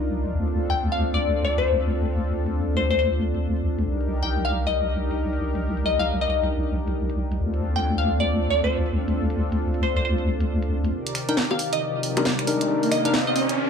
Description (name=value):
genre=UK garage, two-step garage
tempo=136 BPM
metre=4/4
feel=swing 62% on 16ths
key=C dorian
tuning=A4 = 439 Hz
part: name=warm analog pad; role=sustained chords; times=0.0-13.7 s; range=C3 to D5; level=-29 LUFS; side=equal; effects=chorus, tremolo
part: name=deep soft wobble bass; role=bass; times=0.0-10.9 s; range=C2 to D2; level=-24 LUFS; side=equal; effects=chorus
part: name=garage drum kit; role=drums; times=0.0-13.6 s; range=bongos, finger snaps, hi-hat, snare drum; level=-26 LUFS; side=left 1 dB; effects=low-pass filter on hats, low-pass filter on snare, low-pass filter on perc
part: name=glassy wavetable pluck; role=melody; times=0.7-13.4 s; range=C5 to G5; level=-26 LUFS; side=left 3 dB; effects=chorus, dub echo
part: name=riser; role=sound effects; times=11.6-13.7 s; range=none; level=-27 LUFS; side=right 3 dB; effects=none
part: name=bright tine electric piano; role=stabs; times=11.3-13.1 s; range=D4 to Bb4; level=-25 LUFS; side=left 3 dB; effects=low-pass filter, dub echo
room=light reverb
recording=echo-heavy mix, studio ambience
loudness=-21 LUFS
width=side -6 dB against mid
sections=0.0-10.9 A section; 10.9-13.7 B section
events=build-up 10.9-13.7; riser 11.6-13.7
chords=0.3 Dm7; 3.9 Cm7; 7.4 Dm7; 10.9 Cm7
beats=| 0.34 0.78 1.23 1.67 | 2.11 2.55 2.99 3.43 | 3.87 4.31 4.75 5.20 | 5.64 6.08 6.52 6.96 | 7.40 7.84 8.28 8.72 | 9.17 9.61 10.05 10.49 | 10.93 11.37 11.81 12.25 | 12.70 13.14 13.58